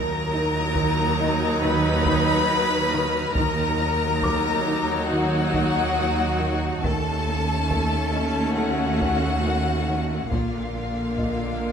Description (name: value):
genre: cinematic, suspense film score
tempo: 69 BPM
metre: 4/4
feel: straight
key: Eb hungarian minor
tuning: A4 = 440 Hz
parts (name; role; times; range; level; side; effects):
- rich chamber violin section; melody; 0.0-11.7 s; F5 to Cb6; -28 LUFS; left 5 dB; none
- clear chamber violin section; second line; 0.0-11.7 s; F4 to Cb5; -28 LUFS; left 1 dB; none
- rich studio viola section; accompaniment; 0.0-11.7 s; D3 to Eb4; -28 LUFS; equal; none
- clear chamber cello section; riff; 0.0-11.7 s; Bb2 to Eb4; -31 LUFS; right 1 dB; none
- rich studio cello section; bass; 0.0-11.7 s; Eb2 to Bb2; -29 LUFS; right 2 dB; none
- warm chamber double bass section; bass; 0.0-11.7 s; Bb1 to Eb2; -28 LUFS; right 3 dB; none
- felt-muted upright piano; texture; 0.0-11.7 s; E4 to E6; -38 LUFS; equal; none
- rich studio violin section; texture; 0.0-6.4 s; Eb6 to Bb6; -36 LUFS; equal; none
- solo taiko drums; drums; 0.8-11.7 s; none; -31 LUFS; equal; none
room: moderate concert hall reverb, RT60 2.0 s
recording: none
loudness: -20 LUFS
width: side -7 dB against mid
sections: 0.0-11.7 A section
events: none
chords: 0.0 Ebmadd9; 6.8 A/Eb; 10.3 Bb